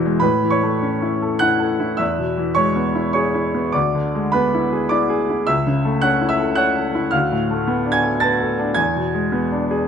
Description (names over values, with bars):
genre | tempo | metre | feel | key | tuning
classical, romantic character piece for solo piano | 93-112 BPM | 3/4 | rubato | A major | A4 = 439 Hz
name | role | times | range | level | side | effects
bright grand piano | solo | 0.0-9.9 s | C#2 to A6 | -17 LUFS | equal | none
room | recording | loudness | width
moderate recital hall reverb, RT60 1.7 s | close, detailed microphones | -17 LUFS | side -7 dB against mid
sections
0.2-9.9 A section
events
none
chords
0.2 A; 2.0 E; 3.7 E7/D; 5.5 A/C#; 7.1 Bm7b5/D; 8.8 E7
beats
| 0.22 0.82 1.42 | 2.00 2.57 3.15 | 3.74 4.34 4.91 | 5.48 6.03 6.58 | 7.13 7.68 8.22 | 8.77 9.33